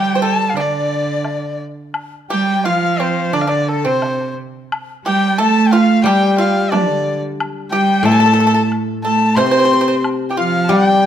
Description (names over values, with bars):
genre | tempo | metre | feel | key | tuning
chinese traditional, Chinese chamber ensemble | 89 BPM | 4/4 | rubato | unclear | A4 = 440 Hz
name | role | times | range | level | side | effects
warm erhu | melody | 0.0-11.1 s | A4 to C6 | -20 LUFS | left 2 dB | none
bright reedy dizi | second line | 0.0-11.1 s | A4 to C6 | -21 LUFS | left 8 dB | none
clear cello | second line | 0.0-11.1 s | C3 to C4 | -17 LUFS | right 4 dB | none
pipa | second line | 0.0-11.1 s | C4 to C5 | -20 LUFS | right 3 dB | none
woodblock | percussion | 0.6-10.9 s | none | -27 LUFS | left 3 dB | none
guzheng | accompaniment | 6.0-11.1 s | A2 to G3 | -19 LUFS | left 4 dB | none
room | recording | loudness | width
moderate recital hall reverb, RT60 1.6 s | close, detailed microphones | -13 LUFS | side -10 dB against mid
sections
0.0-11.1 A section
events
none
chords
none